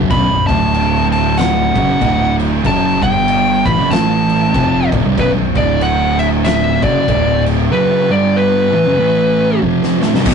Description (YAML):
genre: stoner and doom metal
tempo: 95 BPM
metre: 4/4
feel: swing 60% on 8ths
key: unclear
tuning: A4 = 440 Hz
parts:
  - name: thick fuzz guitar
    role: riff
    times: 0.0-10.3 s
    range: B1 to A3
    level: -19 LUFS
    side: left 2 dB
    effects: distortion
  - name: thick fuzz guitar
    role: riff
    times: 0.0-10.3 s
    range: B1 to A3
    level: -16 LUFS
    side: right 3 dB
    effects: distortion
  - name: growling fingered electric bass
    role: bass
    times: 0.0-10.3 s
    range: B0 to A1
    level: -21 LUFS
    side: left 1 dB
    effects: overdrive
  - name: fuzz lead guitar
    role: melody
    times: 0.1-9.6 s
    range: B4 to B5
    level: -16 LUFS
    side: left 1 dB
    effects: distortion
  - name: oversized low-tuned drum kit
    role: drums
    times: 0.1-10.3 s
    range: crash cymbal, kick drum, snare drum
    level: -20 LUFS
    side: equal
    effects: none
room: moderate small room reverb, RT60 0.5 s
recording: rough rehearsal-room recording, warm saturation, nothing above 10.9 kHz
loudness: -11 LUFS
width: side -6 dB against mid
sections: 0.0-10.3 A section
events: drum fill 9.6-10.3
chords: 0.1 B5; 0.4 D5; 1.7 F#5; 2.0 D5; 2.6 F#m; 3.0 G5; 3.6 B5; 3.9 A5; 4.5 Bm; 5.5 D5; 6.8 Dmaj7/F#; 7.1 D5; 7.7 B5; 8.0 G5; 8.7 B5; 9.0 A5; 9.6 F69